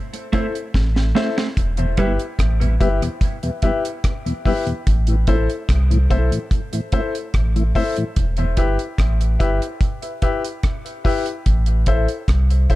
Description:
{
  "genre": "dub reggae",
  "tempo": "73 BPM",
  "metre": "4/4",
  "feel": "straight",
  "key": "E minor",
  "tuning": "A4 = 440 Hz",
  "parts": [
    { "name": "deep reggae drum kit", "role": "drums", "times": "0.1-12.8 s", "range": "hi-hat, kick drum, rim click, snare drum", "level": "-21 LUFS", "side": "equal", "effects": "none" },
    { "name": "clean electric guitar", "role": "accompaniment", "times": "0.3-2.1 s", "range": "G3 to E4", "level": "-26 LUFS", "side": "right 4 dB", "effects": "dub echo" },
    { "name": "clear upright piano", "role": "stabs", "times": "0.3-12.8 s", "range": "E4 to E5", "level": "-25 LUFS", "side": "left 4 dB", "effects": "dub echo" },
    { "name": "warm sub bass", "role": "bass", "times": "0.7-12.8 s", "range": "E1 to C2", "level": "-18 LUFS", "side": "equal", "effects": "none" },
    { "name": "mellow tonewheel organ", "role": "accompaniment", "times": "1.8-8.5 s", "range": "E2 to E4", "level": "-26 LUFS", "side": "left 1 dB", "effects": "chorus vibrato, slow rotary speaker, dub echo" }
  ],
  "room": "small room ambience",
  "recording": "dark, warm production",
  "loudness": "-17 LUFS",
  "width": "side -17 dB against mid",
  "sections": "0.0-12.8 A section",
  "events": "break 0.0-1.6; drum fill 0.7-1.6",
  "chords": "0.0 Am; 1.6 Em; 4.9 Am; 8.2 Em; 11.5 Am",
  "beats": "0.74 | 1.57 2.39 3.22 4.04 | 4.87 5.69 6.52 7.34 | 8.16 8.99 9.81 10.64 | 11.46 12.28"
}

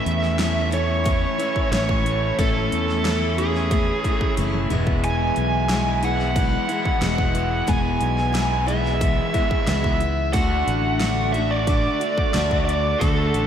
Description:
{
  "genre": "folk rock and heartland rock",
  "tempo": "90 BPM",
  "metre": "4/4",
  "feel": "straight",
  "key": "E mixolydian",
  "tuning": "A4 = 439 Hz",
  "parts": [
    { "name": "bluesy overdriven lead guitar", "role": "melody", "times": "0.0-13.5 s", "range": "G#4 to G#5", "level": "-24 LUFS", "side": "right 2 dB", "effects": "distortion, ping-pong delay" },
    { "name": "picked steel-string acoustic guitar", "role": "accompaniment", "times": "0.0-13.5 s", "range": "E2 to F#4", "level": "-27 LUFS", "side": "left 5 dB", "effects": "none" },
    { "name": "crunchy overdriven guitar", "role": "riff", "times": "0.0-13.5 s", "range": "E2 to F#4", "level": "-28 LUFS", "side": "right 1 dB", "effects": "none" },
    { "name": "fingered electric bass", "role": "bass", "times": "0.1-13.5 s", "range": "E1 to E2", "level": "-24 LUFS", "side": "equal", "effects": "none" },
    { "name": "dubstep drum kit", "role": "drums", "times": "0.1-13.5 s", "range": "hi-hat, kick drum, snare drum, toms", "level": "-25 LUFS", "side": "equal", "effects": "none" }
  ],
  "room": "moderate lush hall reverb, RT60 2.1 s",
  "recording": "dreamy mix soaked in reverb",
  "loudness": "-19 LUFS",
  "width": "side -9 dB against mid",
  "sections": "0.0-13.5 A section",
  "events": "drum fill 4.4-5.0",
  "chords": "0.0 A; 4.7 E; 10.3 D",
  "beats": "0.39 1.06 1.72 | 2.38 3.05 3.71 4.38 | 5.04 5.70 6.36 7.03 | 7.69 8.35 9.02 9.68 | 10.35 11.01 11.68 12.34 | 13.01"
}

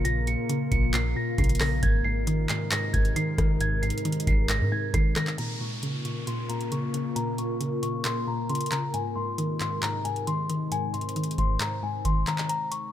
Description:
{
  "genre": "hip hop, trap",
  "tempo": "135 BPM",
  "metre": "4/4",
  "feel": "half-time",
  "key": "unclear",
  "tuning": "A4 = 440 Hz",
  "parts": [
    { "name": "celesta", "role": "melody", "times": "0.0-12.9 s", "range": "Ab5 to Db7", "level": "-32 LUFS", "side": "left 2 dB", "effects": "low-pass filter" },
    { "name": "mallet-like synth pluck", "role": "accompaniment", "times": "0.0-12.5 s", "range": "Ab2 to Eb3", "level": "-30 LUFS", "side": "equal", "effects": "chorus, low-pass filter" },
    { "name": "warbly tape-like pad", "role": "sustained chords", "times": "0.0-12.5 s", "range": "C3 to C5", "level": "-33 LUFS", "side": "left 1 dB", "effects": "chorus, built-in reverb, low-pass filter" },
    { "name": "clean 808-style bass", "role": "bass", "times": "0.0-5.2 s", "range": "Ab1 to Ab2", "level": "-28 LUFS", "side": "equal", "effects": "none" },
    { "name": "booming analog drum machine", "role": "drums", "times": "0.1-12.8 s", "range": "handclaps, hi-hat, kick drum, rim click", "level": "-28 LUFS", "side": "equal", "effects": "none" },
    { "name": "downlifter", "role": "sound effects", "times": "5.4-8.9 s", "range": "none", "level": "-41 LUFS", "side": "equal", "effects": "none" }
  ],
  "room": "little or no reverb",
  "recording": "none",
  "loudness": "-24 LUFS",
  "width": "side -11 dB against mid",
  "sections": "0.0-5.4 A section; 5.4-12.5 B section",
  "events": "break 12.5-12.9",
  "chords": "0.0 Bbm; 1.8 Abadd9; 5.4 Bbm; 8.9 Abadd9",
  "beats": "| 0.05 0.49 0.94 1.38 | 1.83 2.27 2.72 3.16 | 3.61 4.05 4.50 4.94 | 5.38 5.83 6.27 6.72 | 7.16 7.61 8.05 8.49 | 8.94 9.38 9.83 10.27 | 10.72 11.16 11.61 12.05 | 12.49"
}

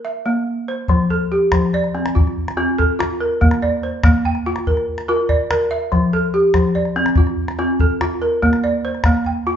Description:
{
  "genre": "west african traditional, West African string and xylophone music",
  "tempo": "96 BPM (dotted quarters)",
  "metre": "12/8",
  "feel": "straight",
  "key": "F major",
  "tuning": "A4 = 441 Hz",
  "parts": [
    { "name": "balafon", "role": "arpeggios", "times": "0.0-9.6 s", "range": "F3 to G5", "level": "-17 LUFS", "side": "equal", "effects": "none" },
    { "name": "calabash", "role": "percussion", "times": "0.9-9.3 s", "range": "none", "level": "-19 LUFS", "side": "left 1 dB", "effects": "none" }
  ],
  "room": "wet large studio reverb, RT60 1.1 s",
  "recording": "band playing live in one room, nothing above 7.5 kHz",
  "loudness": "-15 LUFS",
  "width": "side -9 dB against mid",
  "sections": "0.9-9.6 A section",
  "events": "none",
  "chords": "0.0 C7/Bb; 0.9 F; 3.4 Bb; 5.9 F; 8.4 Bb",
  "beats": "0.25 | 0.89 1.52 2.15 2.78 | 3.41 4.04 4.66 5.29 | 5.92 6.55 7.17 7.80 | 8.43 9.05"
}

